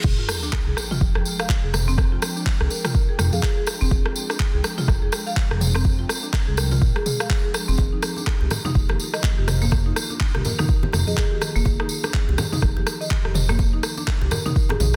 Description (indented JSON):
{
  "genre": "afro house",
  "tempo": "124 BPM",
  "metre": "4/4",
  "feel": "swing 59% on 16ths",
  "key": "F dorian",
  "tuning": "A4 = 440 Hz",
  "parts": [
    { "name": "ethereal airy pad", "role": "sustained chords", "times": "0.0-15.0 s", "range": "Eb3 to G5", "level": "-37 LUFS", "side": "equal", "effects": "ensemble chorus, built-in reverb, sidechain pumping" },
    { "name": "smooth synth bass", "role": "bass", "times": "0.0-15.0 s", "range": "F1 to F2", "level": "-25 LUFS", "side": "equal", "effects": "sidechain pumping" },
    { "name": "deep house drum kit", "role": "drums", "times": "0.0-14.9 s", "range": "crash cymbal, handclaps, rim click, toms", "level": "-30 LUFS", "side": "equal", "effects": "overdrive" },
    { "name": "electronic kick drum", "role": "drums", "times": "0.0-14.7 s", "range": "none", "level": "-23 LUFS", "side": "equal", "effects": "overdrive" },
    { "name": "tambourine", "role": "percussion", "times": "0.0-15.0 s", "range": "none", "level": "-34 LUFS", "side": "equal", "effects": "none" },
    { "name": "reverse cymbal and sub drop", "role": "sound effects", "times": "0.0-2.0 s", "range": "none", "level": "-34 LUFS", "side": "equal", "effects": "none" },
    { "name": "buzzing marimba with hard mallets", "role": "arpeggios", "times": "0.2-14.8 s", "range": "Bb3 to F5", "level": "-35 LUFS", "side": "equal", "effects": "sidechain pumping, digital delay" },
    { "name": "buzzing kalimba", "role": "melody", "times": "1.7-15.0 s", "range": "F4 to C5", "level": "-36 LUFS", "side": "equal", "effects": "digital delay" },
    { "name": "congas", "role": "percussion", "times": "7.8-14.9 s", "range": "none", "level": "-32 LUFS", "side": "equal", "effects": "none" }
  ],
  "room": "small room ambience",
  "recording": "dense, heavily limited modern master",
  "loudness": "-22 LUFS",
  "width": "mono",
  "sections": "0.0-15.0 A section",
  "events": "drop 0.0-15.0; impact 0.0-2.0",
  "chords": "0.0 Fm69; 7.8 Ebsus2/F"
}